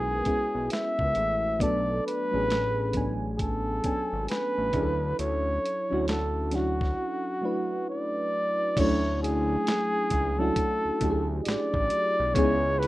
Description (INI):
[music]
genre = R&B, neo-soul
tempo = 67 BPM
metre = 4/4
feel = swing 62% on 16ths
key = unclear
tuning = A4 = 440 Hz
[part]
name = breathy flugelhorn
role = melody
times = 0.0-12.9 s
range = F#4 to E5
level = -28 LUFS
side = equal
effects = slapback echo
[part]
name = mellow FM electric piano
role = accompaniment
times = 0.0-12.9 s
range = F#3 to G#5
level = -30 LUFS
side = equal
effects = chorus
[part]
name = fat analog bass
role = bass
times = 0.0-12.9 s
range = G#1 to D2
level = -31 LUFS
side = equal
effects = none
[part]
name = dusty soul sampler-style drum kit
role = drums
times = 0.3-12.9 s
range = crash cymbal, hi-hat, kick drum, snare drum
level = -31 LUFS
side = equal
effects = none
[sound]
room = digital ambience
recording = rough home demo mix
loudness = -24 LUFS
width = side -17 dB against mid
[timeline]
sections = 0.0-8.8 A section; 8.8-12.9 B section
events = none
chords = 0.0 C#m7; 1.6 Bm9; 4.7 Dmaj9; 12.4 C#m7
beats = 0.71 | 1.61 2.50 3.40 4.29 | 5.19 6.08 6.98 7.87 | 8.77 9.66 10.56 11.46 | 12.35